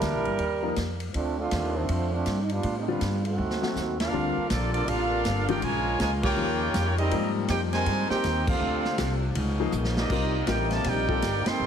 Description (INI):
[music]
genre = jazz, big band swing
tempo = 161 BPM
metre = 4/4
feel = swing 64% on 8ths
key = G minor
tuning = A4 = 443 Hz
[part]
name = warm trombone section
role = second line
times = 0.0-11.7 s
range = C3 to Bb4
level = -30 LUFS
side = right 3 dB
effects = none
[part]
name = warm concert grand piano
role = accompaniment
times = 0.0-11.2 s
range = D3 to Bb4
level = -31 LUFS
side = left 7 dB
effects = none
[part]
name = upright bass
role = bass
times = 0.0-11.7 s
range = G1 to A2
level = -29 LUFS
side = equal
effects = none
[part]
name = vintage drum kit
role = drums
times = 0.0-11.5 s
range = crash cymbal, hi-hat, kick drum, ride cymbal, snare drum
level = -33 LUFS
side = equal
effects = none
[part]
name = clear trumpet section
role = melody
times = 4.0-11.7 s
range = Bb3 to C6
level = -29 LUFS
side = right 1 dB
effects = none
[part]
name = warm saxophone section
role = sustained chords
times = 4.1-11.7 s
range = C3 to F4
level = -36 LUFS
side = right 1 dB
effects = none
[sound]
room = light reverb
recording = heavily compressed radio sound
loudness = -24 LUFS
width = side -8 dB against mid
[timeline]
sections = 0.0-4.1 A section; 4.1-11.7 B section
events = trombone section solo 0.0-4.1; drum fill 3.4-3.8, 9.7-10.1; band accent 3.9, 6.2, 8.4, 11.4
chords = 0.4 Ebadd9; 1.1 Dm7; 2.6 Am7b5; 3.4 D7b9; 4.1 Gm11; 5.6 Bbm7; 6.4 Eb9; 7.1 Abmaj9; 8.6 Dm7; 9.4 C#9; 10.1 Cm9